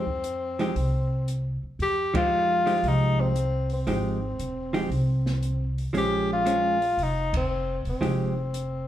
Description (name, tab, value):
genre	jazz, small-group swing and bop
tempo	116 BPM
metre	4/4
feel	swing 67% on 8ths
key	F minor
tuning	A4 = 440 Hz
part	breathy tenor saxophone	melody	0.0-8.9 s	C4 to G4	-27 LUFS	left 2 dB	none
part	vintage hollow-body jazz guitar	accompaniment	0.0-8.3 s	F3 to G4	-28 LUFS	right 2 dB	none
part	upright bass	bass	0.0-8.9 s	E1 to F2	-28 LUFS	equal	none
part	open jazz drum kit	drums	0.1-8.7 s	hi-hat, kick drum, ride cymbal, snare drum	-35 LUFS	equal	none
room	wet club reverb, RT60 0.6 s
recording	heard from further back in the room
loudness	-23 LUFS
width	side -12 dB against mid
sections	0.0-8.9 A section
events	band accent 2.1, 7.2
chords	0.0 Fm9; 5.9 Bbm7; 8.0 Fm9